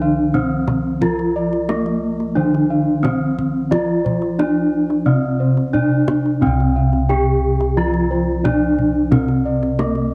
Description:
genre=Javanese gamelan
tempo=89 BPM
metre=4/4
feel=straight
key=C slendro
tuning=A4 = 441 Hz
part: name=gamelan-type bronze metallophone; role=melody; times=0.0-10.1 s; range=Bb3-45c to G4+25c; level=-21 LUFS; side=equal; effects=none
part: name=gamelan-type bronze metallophone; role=accompaniment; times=0.0-10.1 s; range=C3 to F3-35c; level=-24 LUFS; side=equal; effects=cassette tape
part: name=gamelan-type bossed gongs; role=arpeggios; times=0.0-10.1 s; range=Bb4-45c to G5+25c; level=-28 LUFS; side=equal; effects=cassette tape
part: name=gamelan-type bossed gongs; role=bass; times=0.0-10.1 s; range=C2 to F4-35c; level=-24 LUFS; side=equal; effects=none
part: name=kendang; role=percussion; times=0.3-10.0 s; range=none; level=-25 LUFS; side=equal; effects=none
room=light reverb, small room ambience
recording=home recording on cassette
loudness=-18 LUFS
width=mono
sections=0.0-10.1 A section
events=none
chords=none

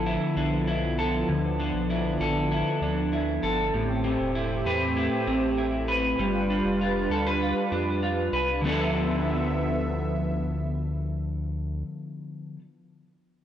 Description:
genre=dream pop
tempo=98 BPM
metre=4/4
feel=straight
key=D dorian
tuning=A4 = 443 Hz
part: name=warm analog pad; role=sustained chords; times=0.0-11.8 s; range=D3 to E5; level=-29 LUFS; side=right 1 dB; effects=chorus
part: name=electric guitar at the edge of break-up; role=arpeggios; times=0.0-12.6 s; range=A2 to B4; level=-27 LUFS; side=left 1 dB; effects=analog chorus, analog delay
part: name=round analog bass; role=bass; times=0.0-11.8 s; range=E1 to F2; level=-32 LUFS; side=equal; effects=none
room=moderate lush hall reverb, RT60 1.6 s, studio reverb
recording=dry, gritty hardware recording, transformer saturation, nothing above 10.7 kHz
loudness=-24 LUFS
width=side -10 dB against mid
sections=0.0-8.6 A section; 8.6-11.1 B section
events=none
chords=0.0 Dm69; 3.7 Am9; 6.2 G7; 8.6 Dm69

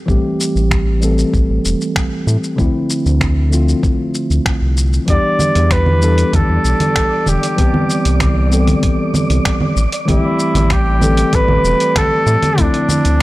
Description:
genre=sunset chillout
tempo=96 BPM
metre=4/4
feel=straight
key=unclear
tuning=A4 = 441 Hz
part: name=mellow tine electric piano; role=accompaniment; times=0.1-13.2 s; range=D3 to A4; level=-18 LUFS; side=equal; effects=auto-pan, tape echo
part: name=round analog bass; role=bass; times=0.1-13.2 s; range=E1 to A2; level=-14 LUFS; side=equal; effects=none
part: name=dusty soul sampler-style drum kit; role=drums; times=0.1-13.2 s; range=congas, finger snaps, hi-hat, shaker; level=-20 LUFS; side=right 1 dB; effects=studio reverb
part: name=electronic kick drum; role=drums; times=0.1-12.7 s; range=none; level=-18 LUFS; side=equal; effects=studio reverb
part: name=clear flugelhorn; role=melody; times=5.1-13.2 s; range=D4 to D5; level=-17 LUFS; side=equal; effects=analog delay
part: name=wind-like tuned noise texture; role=texture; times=6.0-13.2 s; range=D5 to D6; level=-27 LUFS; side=equal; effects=built-in reverb
room=little or no reverb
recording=dry, gritty hardware recording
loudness=-12 LUFS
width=side -18 dB against mid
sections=0.0-13.2 A section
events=none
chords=0.0 Am7; 2.6 Dm9; 5.1 Em7; 7.6 Cmaj7; 9.8 Am7; 12.6 Dm9

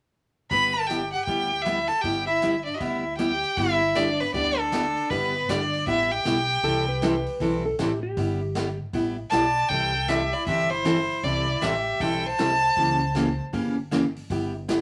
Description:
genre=country, western swing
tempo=157 BPM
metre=4/4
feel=swing 64% on 8ths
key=G major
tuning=A4 = 443 Hz
part: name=clear fiddle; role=melody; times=0.5-13.4 s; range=A4 to B5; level=-26 LUFS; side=equal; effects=none
part: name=dark fiddle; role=second line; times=0.5-13.4 s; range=B3 to D5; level=-35 LUFS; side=equal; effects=none
part: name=picked steel-string acoustic guitar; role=accompaniment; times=0.5-14.8 s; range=C3 to A4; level=-29 LUFS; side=equal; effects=none
part: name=upright bass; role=bass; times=0.5-14.8 s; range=G1 to D2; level=-35 LUFS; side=equal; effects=none
part: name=swinging big-band drum kit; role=drums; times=0.5-14.8 s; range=hi-hat, kick drum, rim click, snare drum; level=-39 LUFS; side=equal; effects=none
part: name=clean lap steel guitar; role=second line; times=6.6-8.8 s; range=G4 to B4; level=-32 LUFS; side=equal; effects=none
room=wet studio reverb, RT60 0.6 s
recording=none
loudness=-25 LUFS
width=mono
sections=0.5-3.6 A section; 3.6-14.8 B section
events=none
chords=0.5 G6; 6.6 C6; 8.2 G6; 9.7 C6; 12.8 C#dim7; 14.3 G6

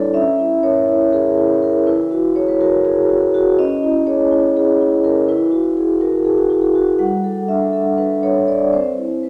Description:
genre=classical, contemporary piece for solo vibraphone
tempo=245 BPM (eighths)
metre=7/8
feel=straight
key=unclear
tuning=A4 = 440 Hz
part: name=vibraphone with soft mallets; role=solo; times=0.0-9.3 s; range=G3 to F#5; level=-16 LUFS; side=equal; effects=none
room=wet recital hall reverb, RT60 1.5 s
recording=none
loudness=-16 LUFS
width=mono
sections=0.0-9.3 A section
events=none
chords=0.2 C#m6; 1.9 Eadd9; 3.6 C#m; 5.3 Eadd9; 7.0 G69; 8.7 C

